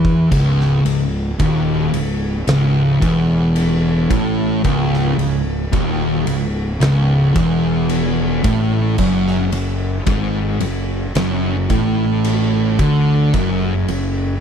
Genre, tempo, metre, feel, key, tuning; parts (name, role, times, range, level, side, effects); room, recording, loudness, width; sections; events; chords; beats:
stoner and doom metal; 55 BPM; 4/4; straight; C# minor; A4 = 439 Hz
thick fuzz guitar; riff; 0.0-14.3 s; C#2 to E3; -16 LUFS; equal; distortion
fuzz fingered electric bass; bass; 0.0-14.4 s; C#1 to E2; -23 LUFS; equal; overdrive, tube saturation
oversized low-tuned drum kit; drums; 0.0-14.1 s; crash cymbal, kick drum, ride cymbal, snare drum; -24 LUFS; equal
little or no reverb; -14 LUFS; side -8 dB against mid
0.0-14.4 A section
drum fill 0.0-0.3
0.3 C#m; 9.0 F#madd9
| 0.31 1.40 2.48 3.56 | 4.64 5.73 6.81 7.90 | 8.98 10.07 11.16 12.25 | 13.34